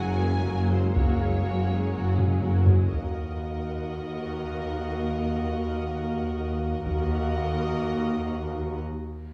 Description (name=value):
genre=cinematic, epic orchestral film score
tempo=122 BPM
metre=4/4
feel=straight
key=Eb minor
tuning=A4 = 440 Hz
part: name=warm symphonic violin section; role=melody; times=0.0-8.8 s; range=C5 to Ab5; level=-44 LUFS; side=equal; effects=none
part: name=warm symphonic violin section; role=second line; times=0.0-8.8 s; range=Db4 to Eb5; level=-41 LUFS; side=equal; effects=none
part: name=warm symphonic viola section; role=accompaniment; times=0.0-8.8 s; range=Gb3 to Bb4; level=-39 LUFS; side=equal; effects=none
part: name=warm French horn section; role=sustained chords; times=0.0-8.8 s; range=Bb3 to Ab4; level=-35 LUFS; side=equal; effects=none
part: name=mellow tuba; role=bass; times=0.0-2.9 s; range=Gb1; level=-35 LUFS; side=equal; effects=none
part: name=rich chamber double bass section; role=bass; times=0.0-8.8 s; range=Gb1 to Eb2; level=-31 LUFS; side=equal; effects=none
part: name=warm symphonic cello section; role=bass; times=0.0-8.8 s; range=Eb2 to Gb2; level=-34 LUFS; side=equal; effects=none
part: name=taiko ensemble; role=drums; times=1.0-3.9, 6.9-7.8 s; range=none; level=-28 LUFS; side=equal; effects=none
part: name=reverse cymbal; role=sound effects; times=9.0-9.3 s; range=none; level=-64 LUFS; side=equal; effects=none
room=moderate scoring stage reverb, RT60 1.6 s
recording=small room reverb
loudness=-27 LUFS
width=mono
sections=0.0-2.9 A section; 2.9-9.3 B section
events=drum fill 2.2-2.9; break 8.8-9.3; reverse cymbal 9.0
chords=0.0 Gbadd9; 2.9 Ebm; 8.8 N.C.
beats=0.46 | 0.95 1.45 1.94 2.43 | 2.92 3.41 3.91 4.40 | 4.89 5.38 5.87 6.37 | 6.86 7.35 7.84 8.33 | 8.82 9.32